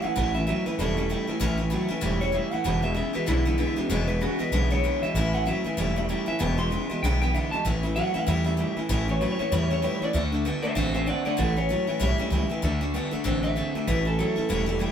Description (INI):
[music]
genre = rockabilly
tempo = 192 BPM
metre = 4/4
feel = swing 59% on 8ths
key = A major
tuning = A4 = 440 Hz
[part]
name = electric guitar through a small old amp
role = melody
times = 0.0-14.8 s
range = E4 to C6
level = -29 LUFS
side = equal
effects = none
[part]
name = picked steel-string acoustic guitar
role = accompaniment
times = 0.0-14.9 s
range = E2 to F#4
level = -30 LUFS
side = left 3 dB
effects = none
[part]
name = electric guitar through a small old amp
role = riff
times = 0.0-14.9 s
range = E2 to C4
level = -29 LUFS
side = right 1 dB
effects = none
[part]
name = upright bass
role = bass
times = 0.0-14.8 s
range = E1 to E2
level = -27 LUFS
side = equal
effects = none
[sound]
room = moderate studio reverb, RT60 0.5 s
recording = band playing live in one room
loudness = -23 LUFS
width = side -8 dB against mid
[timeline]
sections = 0.0-7.6 A section; 7.6-14.9 B section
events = clean electric guitar solo 7.6-14.9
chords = 0.0 A; 2.7 E; 5.2 A; 6.4 E; 7.6 A; 10.1 D; 11.4 A; 12.6 D; 13.9 A